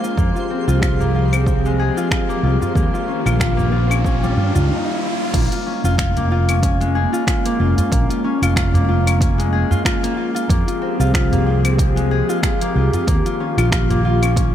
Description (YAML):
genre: organic downtempo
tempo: 93 BPM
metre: 4/4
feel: swing 56% on 16ths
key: Bb dorian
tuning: A4 = 440 Hz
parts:
  - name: airy breathy pad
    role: sustained chords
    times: 0.0-14.5 s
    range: Eb3 to Ab4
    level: -24 LUFS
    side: equal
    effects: chorus, vintage 12-bit sampler grit, sidechain pumping
  - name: concert harp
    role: arpeggios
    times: 0.0-14.5 s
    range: G3 to Ab4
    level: -22 LUFS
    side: left 3 dB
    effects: ping-pong delay
  - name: deep house drum kit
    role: drums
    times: 0.0-14.5 s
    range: claves, crash cymbal, finger snaps, hi-hat, shaker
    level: -26 LUFS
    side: left 1 dB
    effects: overdrive, small room ambience
  - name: twinkling granular texture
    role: texture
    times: 0.0-4.7 s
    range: C5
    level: -38 LUFS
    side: right 2 dB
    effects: built-in reverb
  - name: mellow fretless electric bass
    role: bass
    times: 0.2-14.5 s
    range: F1 to G2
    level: -18 LUFS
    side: right 1 dB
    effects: sidechain pumping
  - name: electronic kick drum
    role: drums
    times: 0.2-14.5 s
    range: none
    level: -20 LUFS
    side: right 1 dB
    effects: overdrive, small room ambience
  - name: riser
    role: sound effects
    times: 2.3-5.3 s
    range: none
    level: -28 LUFS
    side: right 2 dB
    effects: none
  - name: udu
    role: percussion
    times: 1.0-14.0 s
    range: none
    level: -23 LUFS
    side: right 1 dB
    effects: none
room: digital ambience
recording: none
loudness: -15 LUFS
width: side -10 dB against mid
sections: 0.0-5.3 A section; 5.3-14.5 B section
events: riser 2.3-5.3; stop 4.7-5.3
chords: 0.2 Fmadd9; 2.8 Eb9; 5.3 Bbm7; 10.5 Fmadd9; 13.1 Eb9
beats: | 0.18 0.82 1.47 2.11 | 2.76 3.40 4.05 4.69 | 5.34 5.98 6.63 7.27 | 7.92 8.56 9.21 9.85 | 10.50 11.14 11.79 12.44 | 13.08 13.72 14.37